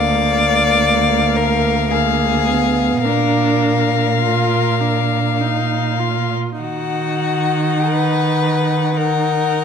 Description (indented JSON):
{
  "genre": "classical, slow romantic movement for string quartet",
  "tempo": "44-61 BPM",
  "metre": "3/4",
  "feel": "rubato",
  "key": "unclear",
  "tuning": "A4 = 440 Hz",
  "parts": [
    { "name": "rich violin", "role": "melody", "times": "0.0-9.6 s", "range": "F5 to Gb5", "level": "-20 LUFS", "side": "left 12 dB", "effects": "none" },
    { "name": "rich violin", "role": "second line", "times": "0.0-9.6 s", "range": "Gb4 to D5", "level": "-21 LUFS", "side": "left 4 dB", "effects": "none" },
    { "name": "rich viola", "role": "accompaniment", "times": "0.0-9.6 s", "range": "Bb3 to F4", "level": "-22 LUFS", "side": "right 3 dB", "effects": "none" },
    { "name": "rich cello", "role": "bass", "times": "0.0-9.6 s", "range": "D2 to Eb3", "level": "-19 LUFS", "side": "right 5 dB", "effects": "none" }
  ],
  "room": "moderate recital hall reverb, RT60 1.4 s",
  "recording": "close, detailed microphones",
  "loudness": "-14 LUFS",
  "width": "side -7 dB against mid",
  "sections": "0.0-9.6 A section",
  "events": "none",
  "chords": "0.0 Bb7/D; 3.0 Bb; 6.6 Ebm"
}